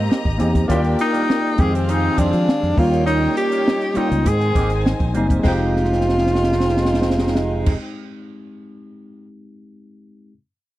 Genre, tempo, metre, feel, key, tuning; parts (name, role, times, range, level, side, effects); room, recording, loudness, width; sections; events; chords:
lush 1970s-style soul; 101 BPM; 4/4; straight; F minor; A4 = 443 Hz
breathy tenor saxophone; melody; 0.0-7.8 s; C4 to Ab4; -20 LUFS; equal
warm studio string section; second line; 0.0-7.7 s; C4 to Bb5; -29 LUFS; left 3 dB
warm horn section; stabs; 0.0-7.7 s; C3 to G4; -28 LUFS; right 5 dB
fingered electric bass; bass; 0.0-7.8 s; F1 to F3; -21 LUFS; equal
mellow electric guitar; riff; 0.1-8.3 s; G3 to Bb4; -30 LUFS; right 5 dB; wah
compact cocktail drum kit; drums; 0.1-9.3 s; crash cymbal, hi-hat, kick drum, snare drum; -21 LUFS; equal
tine electric piano; accompaniment; 0.4-10.3 s; Eb3 to D5; -25 LUFS; left 2 dB
little or no reverb; dry, close 1970s-style studio recording; -16 LUFS; side -15 dB against mid
0.0-5.4 A section; 5.4-7.8 B section
drum fill 5.7-7.7
0.0 Abmaj9; 0.7 Ebmaj9; 1.6 Fm9; 2.8 Eb7; 4.3 Abmaj9; 5.4 Fm9